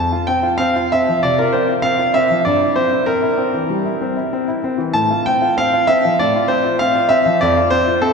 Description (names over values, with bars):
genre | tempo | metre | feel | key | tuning
classical-period piano sonatina | 97 BPM | 4/4 | rubato | F major | A4 = 436 Hz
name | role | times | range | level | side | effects
warm concert grand piano | solo | 0.0-8.1 s | F2 to A5 | -14 LUFS | equal | none
room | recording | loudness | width
wet cathedral reverb, RT60 4.3 s | none | -14 LUFS | side -5 dB against mid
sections
0.0-8.1 A section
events
none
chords
0.0 F5; 2.5 C7/G; 4.9 F/A; 7.4 F